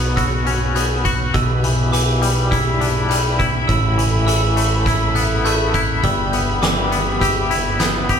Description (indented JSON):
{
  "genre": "post-rock",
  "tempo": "102 BPM",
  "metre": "4/4",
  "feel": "straight",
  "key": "E dorian",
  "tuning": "A4 = 440 Hz",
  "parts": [
    { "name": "rich studio string section", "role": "sustained chords", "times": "0.0-8.2 s", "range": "F#4 to B5", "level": "-25 LUFS", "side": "left 2 dB", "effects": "none" },
    { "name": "glockenspiel with hard plastic mallets", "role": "arpeggios", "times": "0.0-8.2 s", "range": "D6 to G6", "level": "-25 LUFS", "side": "right 8 dB", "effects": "none" },
    { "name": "twangy electric guitar", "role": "arpeggios", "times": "0.0-8.2 s", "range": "A2 to G4", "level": "-22 LUFS", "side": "left 4 dB", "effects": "tremolo" },
    { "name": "growling picked electric bass", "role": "bass", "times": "0.0-8.2 s", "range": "G1 to B1", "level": "-20 LUFS", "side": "right 1 dB", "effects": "overdrive" },
    { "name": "oversized low-tuned drum kit", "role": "drums", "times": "0.2-8.2 s", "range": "hi-hat, kick drum, snare drum", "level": "-21 LUFS", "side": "equal", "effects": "none" }
  ],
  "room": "wet large studio reverb, RT60 1.0 s",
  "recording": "band playing live in one room",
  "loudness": "-15 LUFS",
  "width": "side -7 dB against mid",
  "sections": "0.0-8.2 A section",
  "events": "none",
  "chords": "0.0 Bsus2; 1.3 G6/B; 3.7 Asus2; 6.0 Em/G"
}